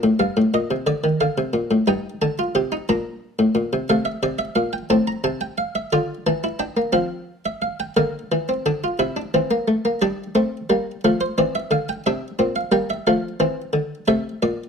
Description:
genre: classical, baroque-style 3-part fugue for harpsichord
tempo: 59 BPM (dotted quarters)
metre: 6/8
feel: straight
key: Bb major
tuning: A4 = 441 Hz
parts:
  - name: buff-stop harpsichord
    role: solo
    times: 0.0-14.7 s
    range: G2 to Bb5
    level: -19 LUFS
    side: equal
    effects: none
room: light reverb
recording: minimal, uncompressed stereo recording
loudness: -19 LUFS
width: side -6 dB against mid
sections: 0.0-8.0 A section; 8.0-14.7 B section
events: none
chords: 0.0 Bb; 0.9 Bb/D; 1.9 Eb/G; 2.9 Bb; 3.9 F/C; 4.9 F/A; 5.9 Bb/D; 7.0 F5; 8.0 Bb/D; 9.0 Am/C; 10.0 Gm; 11.0 F; 12.1 C7; 13.1 F; 14.1 D5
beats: 0.89 | 1.89 2.90 | 3.91 4.92 | 5.93 6.95 | 7.98 9.01 | 10.02 11.04 | 12.05 13.06 | 14.07

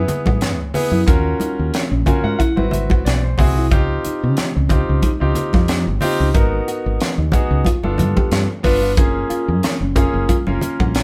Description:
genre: electric jazz fusion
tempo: 91 BPM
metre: 4/4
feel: swing 55% on 16ths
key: unclear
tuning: A4 = 439 Hz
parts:
  - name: clear grand piano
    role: accompaniment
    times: 0.0-11.0 s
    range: A#3 to G#5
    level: -24 LUFS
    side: equal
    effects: none
  - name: woody fretless electric bass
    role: bass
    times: 0.0-11.0 s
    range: F#1 to C#3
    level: -22 LUFS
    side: equal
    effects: none
  - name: crisp fusion drum kit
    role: drums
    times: 0.1-11.0 s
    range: hi-hat, kick drum, snare drum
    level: -21 LUFS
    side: equal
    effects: none
  - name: congas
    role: percussion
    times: 0.1-10.9 s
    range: none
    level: -26 LUFS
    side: equal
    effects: none
  - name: mellow electric guitar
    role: stabs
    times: 0.3-11.0 s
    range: B#3 to G4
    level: -28 LUFS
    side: equal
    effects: none
room: light reverb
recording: band playing live in one room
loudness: -17 LUFS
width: mono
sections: 0.0-11.0 A section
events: grand piano fill 1.7-3.7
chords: 0.0 F#m11; 1.1 D#m7; 2.4 G#7alt; 3.7 C#maj9#11; 6.3 G#m9; 7.7 G9; 9.0 F#maj9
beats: 0.41 | 1.07 1.73 2.39 3.05 | 3.71 4.37 5.03 5.69 | 6.35 7.00 7.66 8.32 | 8.98 9.64 10.29 10.95

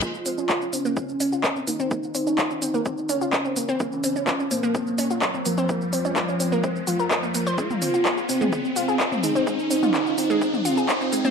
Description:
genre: melodic techno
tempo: 127 BPM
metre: 4/4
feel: straight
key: Bb minor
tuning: A4 = 440 Hz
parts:
  - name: fat analog lead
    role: melody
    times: 0.0-11.3 s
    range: F3 to F4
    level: -25 LUFS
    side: right 1 dB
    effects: sidechain pumping, ping-pong delay
  - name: analog pluck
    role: arpeggios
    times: 0.0-11.3 s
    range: Ab3 to C5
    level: -26 LUFS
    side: equal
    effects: chorus, sidechain pumping, dub echo
  - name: electronic kick drum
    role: drums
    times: 0.0-11.0 s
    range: none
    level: -31 LUFS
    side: equal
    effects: overdrive, high-pass filter on kick
  - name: techno drum kit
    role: drums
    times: 0.0-11.3 s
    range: handclaps, hi-hat, shaker, toms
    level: -26 LUFS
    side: equal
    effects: overdrive, sidechain pumping on perc, sidechain pumping on toms, sidechain pumping on hats
  - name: reverse cymbal and riser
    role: sound effects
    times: 0.0-11.3 s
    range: none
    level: -31 LUFS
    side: right 1 dB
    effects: none
room: wet digital room reverb, RT60 1.0 s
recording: high-pass filter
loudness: -21 LUFS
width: side -6 dB against mid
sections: 0.0-11.3 A section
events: build-up 0.0-11.3; riser 0.0-11.3; filter sweep on synth pluck 0.0-11.3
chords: 0.0 Bbmadd9; 7.6 Fm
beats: | 0.02 0.49 0.97 1.44 | 1.91 2.38 2.86 3.33 | 3.80 4.27 4.75 5.22 | 5.69 6.16 6.64 7.11 | 7.58 8.05 8.53 9.00 | 9.47 9.94 10.42 10.89

